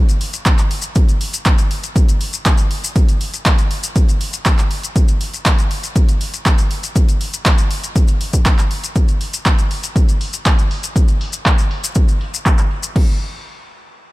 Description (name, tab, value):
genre	house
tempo	120 BPM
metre	4/4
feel	straight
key	none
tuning	none
part	deep house drum kit	drums	0.1-13.1 s	crash cymbal, handclaps, hi-hat	-23 LUFS	right 1 dB	overdrive, sidechain pumping on hats, low-pass filter on hats, studio reverb, low-pass filter on snare, sidechain pumping on cymbals, low-pass filter on cymbals
part	maracas	percussion	0.1-12.9 s	none	-24 LUFS	left 4 dB	none
part	electronic kick drum	drums	0.5-13.1 s	none	-14 LUFS	equal	overdrive, studio reverb
room	little or no reverb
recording	none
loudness	-14 LUFS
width	side -19 dB against mid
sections	0.0-9.0 A section; 9.0-13.0 B section; 13.0-14.1 C section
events	drop 0.0-9.0; filter sweep on drum 9.0-13.0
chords	none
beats	0.46 | 0.96 1.46 1.96 2.46 | 2.96 3.46 3.96 4.46 | 4.96 5.46 5.96 6.46 | 6.96 7.46 7.96 8.46 | 8.96 9.46 9.96 10.46 | 10.96 11.46 11.96 12.46 | 12.96